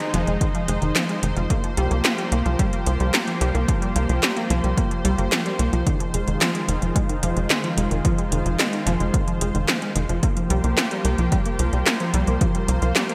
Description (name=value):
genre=synthwave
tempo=110 BPM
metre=4/4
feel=straight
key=F minor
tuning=A4 = 436 Hz
part: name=lush unison pad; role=sustained chords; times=0.0-13.1 s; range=Eb3 to C5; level=-30 LUFS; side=equal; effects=chorus, sidechain pumping
part: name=analog pluck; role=arpeggios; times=0.0-13.1 s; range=Eb3 to Bb3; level=-29 LUFS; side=equal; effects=chorus, cassette tape, digital delay
part: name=80s electronic pad drums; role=drums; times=0.0-13.1 s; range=handclaps, hi-hat, snare drum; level=-27 LUFS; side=equal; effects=none
part: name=tight sequencer bass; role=bass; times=0.1-12.9 s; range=F1 to C2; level=-25 LUFS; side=equal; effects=none
part: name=electronic kick drum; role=drums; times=0.4-12.5 s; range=none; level=-25 LUFS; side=equal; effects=none
room=moderate lush hall reverb, RT60 2.3 s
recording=bright 1980s-style digital production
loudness=-22 LUFS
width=mono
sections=0.0-13.1 A section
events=none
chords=0.0 Fm7; 1.5 C7sus4; 5.9 Fm7; 10.2 C7sus4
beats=0.41 0.96 | 1.50 2.05 2.59 3.14 | 3.68 4.23 4.78 5.32 | 5.87 6.41 6.96 7.50 | 8.05 8.59 9.14 9.68 | 10.23 10.78 11.32 11.87 | 12.41 12.96